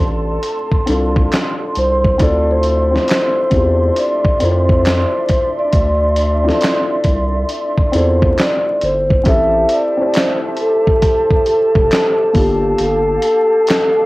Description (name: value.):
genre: lo-fi hip hop.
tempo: 68 BPM.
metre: 4/4.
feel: swing 65% on 16ths.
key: D minor.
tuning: A4 = 442 Hz.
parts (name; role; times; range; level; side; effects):
felt-muted upright piano; accompaniment; 0.0-14.1 s; Bb3 to C5; -22 LUFS; left 2 dB; cassette tape, low-pass filter, plate reverb.
large flute ensemble; sustained chords; 0.0-14.1 s; D4 to C6; -23 LUFS; right 2 dB; low-pass filter, cassette tape, plate reverb.
saturated sub bass; bass; 0.0-13.2 s; F1 to F2; -18 LUFS; equal; transformer saturation.
dusty soul sampler-style drum kit; drums; 0.4-14.0 s; handclaps, hi-hat, kick drum, snare drum; -17 LUFS; equal; vintage 12-bit sampler grit, cassette tape.
vibraphone with soft mallets; melody; 1.8-14.1 s; G4 to E5; -15 LUFS; equal; low-pass filter, cassette tape.
room: light reverb.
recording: home recording on cassette, vinyl crackle.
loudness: -12 LUFS.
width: side -20 dB against mid.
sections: 0.0-9.3 A section; 9.3-14.1 B section.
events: none.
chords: 0.0 Bbmaj9 (rootless); 2.2 Dm9; 9.3 Am7; 12.3 Gm9.